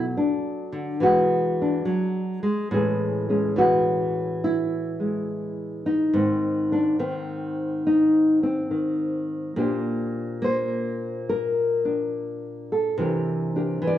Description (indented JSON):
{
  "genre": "solo jazz",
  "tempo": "70 BPM",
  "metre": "4/4",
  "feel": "swing 68% on 8ths",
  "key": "unclear",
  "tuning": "A4 = 440 Hz",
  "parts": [
    { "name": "nylon-string guitar", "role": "solo", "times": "0.0-14.0 s", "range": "Ab2 to D5", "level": "-22 LUFS", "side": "equal", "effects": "none" }
  ],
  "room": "moderate large studio reverb, RT60 1.1 s",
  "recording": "worn, warbling old tape, cassette tape, warbly pitch drift",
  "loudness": "-22 LUFS",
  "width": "side -12 dB against mid",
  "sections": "0.0-14.0 A section",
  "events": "none",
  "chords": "0.0 Bm7; 1.0 E9; 2.7 Amaj7; 6.1 Ab; 9.5 Bb69; 13.0 C9"
}